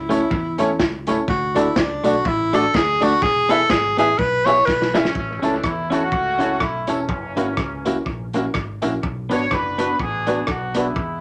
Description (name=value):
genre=ska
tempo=124 BPM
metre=4/4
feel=swing 58% on 8ths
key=A major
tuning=A4 = 440 Hz
part: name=bright tenor saxophone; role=melody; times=0.0-4.9 s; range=D4 to C#5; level=-21 LUFS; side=equal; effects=none
part: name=fingered electric bass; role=bass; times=0.0-11.2 s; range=E1 to E2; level=-34 LUFS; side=equal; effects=none
part: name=clean electric guitar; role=accompaniment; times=0.1-10.9 s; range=A3 to A4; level=-26 LUFS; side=equal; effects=none
part: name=dark upright piano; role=stabs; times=0.1-10.9 s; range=B3 to E5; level=-25 LUFS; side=equal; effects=none
part: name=crunchy breakbeat drum kit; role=drums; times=0.1-11.1 s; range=hi-hat, kick drum, rim click, snare drum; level=-26 LUFS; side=equal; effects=dub echo
part: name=tambourine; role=percussion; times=0.1-10.8 s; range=none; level=-47 LUFS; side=equal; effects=none
part: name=warm horn section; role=melody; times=5.0-11.2 s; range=E3 to C#5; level=-27 LUFS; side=equal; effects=none
room=moderate small room reverb, RT60 0.5 s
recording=tube saturation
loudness=-20 LUFS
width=mono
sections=0.0-5.2 A section; 5.2-11.2 B section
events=tenor saxophone solo 0.0-5.2; drum fill 4.7-5.2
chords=0.0 A; 1.3 D; 3.2 E; 5.2 A; 7.1 F#7; 9.0 Bm